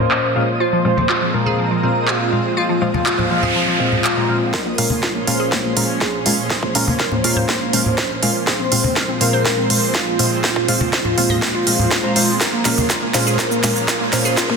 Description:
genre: progressive house.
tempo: 122 BPM.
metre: 4/4.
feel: straight.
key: Bb minor.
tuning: A4 = 440 Hz.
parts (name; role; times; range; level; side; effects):
wide unison lead; melody; 0.0-14.6 s; F4 to C5; -23 LUFS; equal; wide subtle chorus, digital delay.
lush unison pad; sustained chords; 0.0-14.6 s; Bb2 to Db4; -25 LUFS; right 2 dB; chorus, sidechain pumping.
twinkling granular texture; texture; 0.0-14.6 s; C5 to Eb6; -32 LUFS; right 1 dB; built-in reverb, sidechain pumping.
house drum kit; drums; 0.1-14.5 s; handclaps, hi-hat, shaker, snare drum; -20 LUFS; right 1 dB; soft clipping on snare, high-pass filter on snare, studio reverb, high-pass filter on hats, high-pass filter on perc.
deep mellow chord stab; stabs; 0.4-14.4 s; Bb2 to Bb5; -22 LUFS; left 1 dB; chorus, sidechain pumping, digital delay.
glassy wavetable pluck; arpeggios; 0.6-14.6 s; F3 to Eb5; -24 LUFS; left 1 dB; chorus, phaser, sidechain pumping, digital delay.
congas; percussion; 1.0-12.9 s; none; -23 LUFS; equal; sidechain pumping on perc.
noise sweep and riser; sound effects; 3.0-4.5, 13.5-14.6 s; none; -25 LUFS; right 2 dB; none.
electronic kick drum; drums; 4.5-14.6 s; none; -25 LUFS; right 1 dB; high-pass filter on kick, studio reverb.
room: moderate lush hall reverb, RT60 1.9 s.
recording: dense, heavily limited modern master, low-pass filter.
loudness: -15 LUFS.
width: side -5 dB against mid.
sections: 0.0-4.5 A section; 4.5-14.6 B section.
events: filter sweep 0.0-4.5; noise sweep 3.0-4.5; build-up 4.5-14.6; drum fill 4.5-14.6; filter sweep on synth arpeggio sound 4.5-14.6; filter sweep on analog synth lead 4.5-14.6.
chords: 0.0 Bbm7; 0.6 Fm/Bb; 4.5 Bbm7; 8.5 Fm/Bb; 12.4 Bbm7.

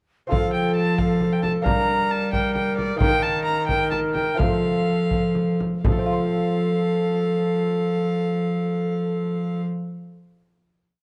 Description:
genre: classical, renaissance-style consort dance.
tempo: 80-90 BPM (dotted quarters).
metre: 6/8.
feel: straight.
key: F mixolydian.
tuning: A4 = 440 Hz.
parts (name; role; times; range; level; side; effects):
rich violin; melody; 0.3-9.6 s; D5 to Bb5; -30 LUFS; equal; none.
mellow bass recorder; second line; 0.3-9.6 s; A4 to Bb4; -28 LUFS; equal; none.
lute; accompaniment; 0.3-10.4 s; Eb3 to C5; -33 LUFS; equal; none.
rich cello; bass; 0.3-9.6 s; Eb3 to G3; -27 LUFS; equal; none.
frame drum; percussion; 0.3-6.1 s; none; -28 LUFS; equal; none.
room: wet recital hall reverb, RT60 1.3 s.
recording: dark, warm production.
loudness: -22 LUFS.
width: mono.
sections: 0.3-5.8 A section; 5.8-8.8 final chord.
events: slowing down 2.3-5.8.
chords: 0.3 F; 1.7 Gm; 3.0 Eb5; 4.4 F.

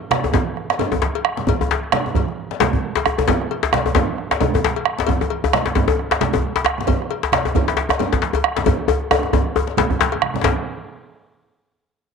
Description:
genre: west african traditional, West African drum ensemble.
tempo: 134 BPM.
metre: 4/4.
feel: swing 57% on 16ths.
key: none.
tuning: none.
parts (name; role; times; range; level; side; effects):
bombo; percussion; 0.1-10.6 s; none; -21 LUFS; right 5 dB; none.
congas; percussion; 0.1-10.6 s; none; -26 LUFS; right 9 dB; none.
djembe; percussion; 0.1-10.7 s; none; -25 LUFS; left 6 dB; none.
djembe; percussion; 0.2-10.6 s; none; -20 LUFS; left 5 dB; none.
cowbell; percussion; 0.3-10.7 s; none; -28 LUFS; left 11 dB; none.
room: wet spring reverb, RT60 1.4 s, small room ambience.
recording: 1960s-style stereo with parts hard left and right.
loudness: -17 LUFS.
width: side -5 dB against mid.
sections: 0.0-10.4 A section; 10.4-12.1 B section.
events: speeding up 0.0-12.1; drum fill 8.7-10.4.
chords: none.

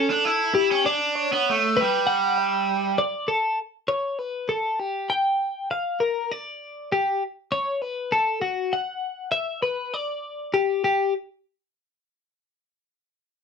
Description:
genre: rock.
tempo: 66 BPM (dotted quarters).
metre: 6/8.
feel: straight.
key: G lydian.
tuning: A4 = 440 Hz.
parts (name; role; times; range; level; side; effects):
cranked stack guitar; melody; 0.0-3.0 s; G3 to E4; -21 LUFS; right 4 dB; overdrive, slapback echo.
twelve-string electric guitar; arpeggios; 0.0-11.1 s; F#4 to G5; -24 LUFS; left 3 dB; none.
room: moderate studio ambience, RT60 0.5 s.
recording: none.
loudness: -22 LUFS.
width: side -6 dB against mid.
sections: 0.0-3.6 A section; 3.6-10.9 B section; 10.9-12.7 C section.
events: none.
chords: 0.0 Em7; 3.6 Gadd9; 5.4 Bb6; 7.2 F#m; 9.0 Gmaj7; 10.9 N.C..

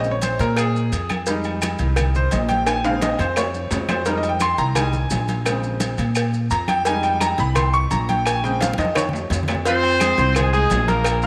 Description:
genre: latin, salsa.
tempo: 172 BPM.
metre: 4/4.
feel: straight.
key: F minor.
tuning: A4 = 440 Hz.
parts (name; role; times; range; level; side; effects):
bright concert grand piano; accompaniment; 0.0-11.3 s; Db3 to Db6; -24 LUFS; equal; none.
upright bass; bass; 0.0-11.3 s; Bb1 to Bb2; -25 LUFS; equal; none.
congas; percussion; 0.0-11.3 s; none; -32 LUFS; equal; none.
maracas; percussion; 0.0-11.3 s; none; -37 LUFS; equal; none.
agogo bells and timbales; percussion; 0.2-11.2 s; none; -31 LUFS; equal; none.
cowbell; percussion; 0.2-11.2 s; none; -32 LUFS; equal; none.
claves; percussion; 0.6-11.2 s; none; -36 LUFS; equal; none.
bright horn section; melody; 9.7-11.3 s; Ab3 to C5; -21 LUFS; equal; none.
room: moderate plate reverb, RT60 2.8 s.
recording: none.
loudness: -20 LUFS.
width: mono.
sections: 0.0-9.7 A section; 9.7-11.3 B section.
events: grand piano solo 0.0-9.7; drum fill 2.7-4.1, 8.6-9.7.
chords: 0.0 Bbm9; 1.3 Fm7; 2.7 Bbm9; 4.1 Fm7; 5.5 Bbm9; 6.9 Fm7; 8.3 Bbm9; 9.7 Fm.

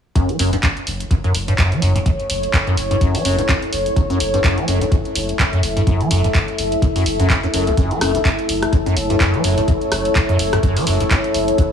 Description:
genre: acid house.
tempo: 126 BPM.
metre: 4/4.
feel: swing 57% on 16ths.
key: F# minor.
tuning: A4 = 437 Hz.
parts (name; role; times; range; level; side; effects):
liquid acid bass; riff; 0.2-11.6 s; F#1 to F#3; -19 LUFS; equal; phaser, overdrive, lush chorus, sidechain pumping, digital delay.
electronic kick drum; drums; 0.2-11.7 s; none; -19 LUFS; equal; overdrive, studio reverb.
punchy analog drum machine; drums; 0.2-11.7 s; handclaps, hi-hat, rim click; -22 LUFS; equal; studio reverb.
deep dark ambient pad; texture; 1.5-11.7 s; E4 to E5; -21 LUFS; left 2 dB; chorus, built-in reverb, sidechain pumping.
warm sub bass; bass; 0.4-11.5 s; F#1; -25 LUFS; equal; tube saturation, sidechain pumping.
room: moderate digital room reverb, RT60 1.0 s.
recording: none.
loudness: -15 LUFS.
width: side -8 dB against mid.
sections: 0.2-11.7 A section.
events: none.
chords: 0.2 F#m7.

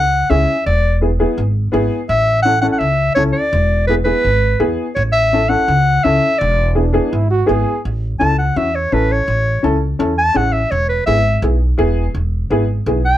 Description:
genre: latin.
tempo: 167 BPM.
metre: 4/4.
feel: straight.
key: A major.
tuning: A4 = 439 Hz.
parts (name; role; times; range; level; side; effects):
clear clarinet; melody; 0.0-13.2 s; B4 to A5; -16 LUFS; equal; none.
upright bass; bass; 0.0-13.2 s; E1 to E2; -17 LUFS; equal; none.
dark upright piano; accompaniment; 0.3-13.0 s; B3 to A4; -18 LUFS; left 1 dB; none.
warm trombone; second line; 6.8-7.8 s; D4 to G#4; -20 LUFS; right 4 dB; none.
room: light reverb.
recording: none.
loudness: -13 LUFS.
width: side -12 dB against mid.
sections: 0.0-7.8 A section; 7.8-13.2 B section.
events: clarinet solo 7.8-13.2.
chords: 0.0 A (rootless); 0.7 E7; 2.1 A; 3.5 E7; 5.0 A; 6.4 E7; 7.8 A; 10.7 E.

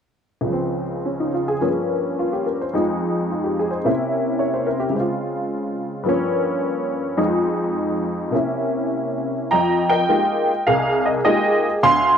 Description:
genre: solo jazz.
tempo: 106 BPM.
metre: 4/4.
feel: swing 66% on 8ths, rubato.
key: F minor.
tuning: A4 = 439 Hz.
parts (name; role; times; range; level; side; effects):
honky-tonk upright piano; solo; 0.4-12.2 s; C2 to C6; -18 LUFS; equal; none.
room: moderate studio reverb, RT60 0.9 s.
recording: none.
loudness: -18 LUFS.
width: side -7 dB against mid.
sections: 0.5-9.5 A section; 9.5-12.2 B section.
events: none.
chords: 0.5 Dbmaj7; 1.6 Gm7b5; 2.7 Fm7; 3.9 C7b9; 5.0 Dbmaj7; 6.1 Gm7b5; 7.2 Fm7; 8.3 C7b9; 9.5 Fm11.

